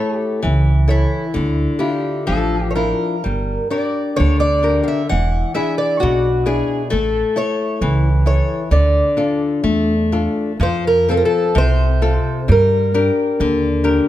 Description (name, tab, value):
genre	fado-style ballad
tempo	65 BPM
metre	2/4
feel	uneven beats, rubato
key	D harmonic minor, F major from 10.6 s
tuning	A4 = 437 Hz
part	fingerpicked twelve-string acoustic guitar	melody	0.0-13.8 s	E4 to F#5	-20 LUFS	equal	none
part	nylon-string guitar	accompaniment	0.0-14.1 s	B2 to C#5	-19 LUFS	left 3 dB	none
part	upright bass	bass	0.4-14.0 s	E1 to G2	-17 LUFS	right 1 dB	none
room	light reverb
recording	close, detailed microphones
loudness	-15 LUFS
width	side -13 dB against mid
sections	0.0-10.6 A section; 10.6-14.1 B section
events	none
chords	0.0 A; 1.4 Dmadd9; 3.3 Gm; 5.1 E7; 6.9 A; 8.7 Dm; 10.6 F; 12.5 Gm